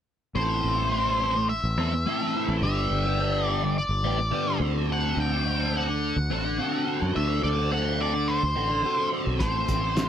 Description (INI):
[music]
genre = psychedelic rock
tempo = 106 BPM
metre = 4/4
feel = straight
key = A dorian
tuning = A4 = 440 Hz
[part]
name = overdriven electric guitar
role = riff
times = 0.3-10.1 s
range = G2 to A4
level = -27 LUFS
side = equal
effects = flanger
[part]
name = octave-fuzz lead guitar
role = melody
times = 0.4-10.1 s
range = C5 to G5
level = -28 LUFS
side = equal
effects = distortion, slapback echo
[part]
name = overdriven fingered electric bass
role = bass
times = 0.4-10.1 s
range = G1 to F#2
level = -28 LUFS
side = equal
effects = none
[part]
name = cloth-damped thuddy drum kit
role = drums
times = 9.4-10.1 s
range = hi-hat, kick drum, snare drum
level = -27 LUFS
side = equal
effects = none
[part]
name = tambourine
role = percussion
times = 9.4-10.1 s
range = none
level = -46 LUFS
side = right 10 dB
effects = none
[sound]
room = light reverb, small room ambience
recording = none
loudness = -23 LUFS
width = side -9 dB against mid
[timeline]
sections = 0.4-10.1 A section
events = none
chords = 0.4 Am; 2.6 G; 4.6 D7; 9.4 Am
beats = | 0.36 0.92 1.49 2.06 | 2.63 3.19 3.76 4.33 | 4.89 5.46 6.02 6.59 | 7.15 7.71 8.28 8.84 | 9.40 9.96